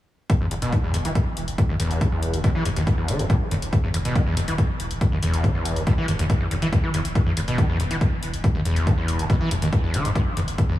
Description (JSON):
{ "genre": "driving peak-time techno", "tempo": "140 BPM", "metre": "4/4", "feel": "straight", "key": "unclear", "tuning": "A4 = 438 Hz", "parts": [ { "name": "electronic hi-hat", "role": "drums", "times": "0.3-10.7 s", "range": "none", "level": "-35 LUFS", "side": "left 3 dB", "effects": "overdrive, sidechain pumping on hats" }, { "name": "electronic kick drum", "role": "drums", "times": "0.3-10.7 s", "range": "none", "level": "-21 LUFS", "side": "equal", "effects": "overdrive" }, { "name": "screaming distorted acid line", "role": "riff", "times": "0.4-10.8 s", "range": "E1 to E3", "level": "-24 LUFS", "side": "equal", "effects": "distortion, chorus, sidechain pumping, tape echo" }, { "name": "saturated sub bass", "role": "bass", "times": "0.5-10.6 s", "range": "E1", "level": "-31 LUFS", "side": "equal", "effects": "overdrive, sidechain pumping, low-pass filter" } ], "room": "moderate cathedral reverb, RT60 4.5 s", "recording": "dreamy mix soaked in reverb, small room ambience", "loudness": "-20 LUFS", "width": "side -14 dB against mid", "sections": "0.3-10.8 A section", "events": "none", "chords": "0.3 E5" }